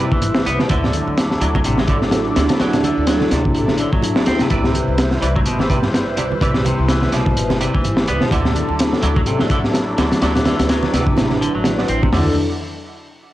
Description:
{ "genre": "breakbeat, breaks", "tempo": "126 BPM", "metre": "4/4", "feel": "swing 57% on 16ths", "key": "D mixolydian", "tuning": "A4 = 440 Hz", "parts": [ { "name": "phased analog pad", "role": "sustained chords", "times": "0.0-12.3 s", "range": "F#3 to D5", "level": "-22 LUFS", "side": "equal", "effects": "phaser, chorus, sidechain pumping, cassette tape" }, { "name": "semi-hollow electric guitar", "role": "riff", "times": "0.0-12.3 s", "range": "B2 to C4", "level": "-23 LUFS", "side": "equal", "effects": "overdrive, vintage 12-bit sampler grit, cassette tape, analog delay" }, { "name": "orchestra-hit-like synth stab", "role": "stabs", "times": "0.0-12.3 s", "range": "E4 to D5", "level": "-29 LUFS", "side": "right 6 dB", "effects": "built-in reverb, cassette tape, analog delay" }, { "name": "upright bass", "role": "bass", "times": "0.0-12.3 s", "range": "G1 to D2", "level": "-23 LUFS", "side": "equal", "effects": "none" }, { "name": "crunchy breakbeat drum kit", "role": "drums", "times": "0.1-12.3 s", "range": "hi-hat, kick drum, snare drum, toms", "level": "-18 LUFS", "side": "equal", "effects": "cassette tape" }, { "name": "congas", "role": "percussion", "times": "0.2-12.1 s", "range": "none", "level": "-28 LUFS", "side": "right 6 dB", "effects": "none" } ], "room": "moderate studio reverb, RT60 0.6 s", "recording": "home recording on cassette", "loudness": "-15 LUFS", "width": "side -15 dB against mid", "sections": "0.0-12.1 A section; 12.1-13.3 B section", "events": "drop 0.0-12.1", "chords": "0.0 Cmaj7; 0.7 Dadd9; 4.5 Cmaj7; 8.3 Dadd9", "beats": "0.22 | 0.70 1.18 1.65 2.13 | 2.60 3.08 3.56 4.03 | 4.51 4.98 5.46 5.94 | 6.41 6.89 7.37 7.84 | 8.32 8.79 9.27 9.75 | 10.22 10.70 11.18 11.65 | 12.13" }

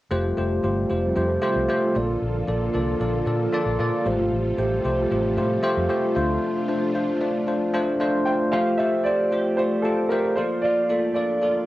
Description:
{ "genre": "pop", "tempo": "114 BPM", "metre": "4/4", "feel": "straight", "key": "F major", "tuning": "A4 = 439 Hz", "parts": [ { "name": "bell-like tine electric piano", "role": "accompaniment", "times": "0.1-11.7 s", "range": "Ab3 to D5", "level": "-22 LUFS", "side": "equal", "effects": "analog chorus" }, { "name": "string machine, violas", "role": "sustained chords", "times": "0.1-8.5 s", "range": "C3 to A4", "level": "-30 LUFS", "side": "right 1 dB", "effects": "ensemble chorus" }, { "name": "vintage muted fingered electric bass", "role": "bass", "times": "0.1-6.4 s", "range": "F1 to Bb2", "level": "-27 LUFS", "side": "equal", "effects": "tube saturation" }, { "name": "warm grand piano", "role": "melody", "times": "8.3-11.6 s", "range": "A4 to G5", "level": "-24 LUFS", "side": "right 1 dB", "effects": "cassette tape" }, { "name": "direct-recorded clean electric guitar", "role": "riff", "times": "8.5-11.7 s", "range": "F3 to G4", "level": "-32 LUFS", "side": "right 3 dB", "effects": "ensemble chorus" } ], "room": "wet studio reverb, RT60 0.5 s", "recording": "home recording on cassette", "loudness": "-20 LUFS", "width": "side -16 dB against mid", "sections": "0.1-8.5 A section; 8.5-11.7 B section", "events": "none", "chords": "0.1 Fadd9; 2.0 Bbmaj7; 4.1 Fadd9; 6.2 Dm7; 8.5 Fadd9; 10.4 Bbmaj7", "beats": "| 0.11 0.64 1.17 1.69 | 2.22 2.74 3.27 3.80 | 4.32 4.85 5.38 5.90 | 6.43 6.95 7.48 8.01 | 8.53 9.06 9.59 10.11 | 10.64 11.16" }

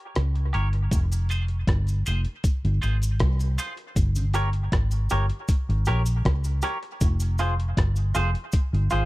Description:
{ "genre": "dub reggae", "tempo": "79 BPM", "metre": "4/4", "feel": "straight", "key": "F minor", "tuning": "A4 = 439 Hz", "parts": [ { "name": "vintage muted fingered electric bass", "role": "bass", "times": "0.2-9.1 s", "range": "F1 to Db2", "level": "-23 LUFS", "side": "equal", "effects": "none" }, { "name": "lo-fi sampler-style drum kit", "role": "drums", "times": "0.2-9.1 s", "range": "hi-hat, kick drum, rim click", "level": "-24 LUFS", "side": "equal", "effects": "none" }, { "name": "twangy electric guitar", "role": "accompaniment", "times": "0.5-9.1 s", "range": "F4 to Db5", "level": "-31 LUFS", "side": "right 1 dB", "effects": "wide subtle chorus, high-pass filter, dub echo" }, { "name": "cabasa", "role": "percussion", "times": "0.9-9.1 s", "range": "none", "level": "-39 LUFS", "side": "equal", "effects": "high-pass filter on perc" }, { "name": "mellow tonewheel organ", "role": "accompaniment", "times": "1.1-4.3 s", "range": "F2 to C4", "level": "-38 LUFS", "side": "left 1 dB", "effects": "slow rotary speaker, high-pass filter, dub echo" }, { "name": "reed electric piano", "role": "stabs", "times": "1.3-3.8 s", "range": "C4 to C5", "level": "-54 LUFS", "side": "left 5 dB", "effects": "none" } ], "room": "little or no reverb", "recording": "dry, close 1970s-style studio recording", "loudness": "-22 LUFS", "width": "side -19 dB against mid", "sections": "0.9-9.1 A section", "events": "break 0.0-0.9; filter sweep 0.0-4.0", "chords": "0.0 Gdim; 0.9 Fm; 4.0 Gdim; 7.0 Fm", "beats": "0.15 | 0.92 1.68 2.44 3.20 | 3.96 4.72 5.49 6.25 | 7.01 7.77 8.53" }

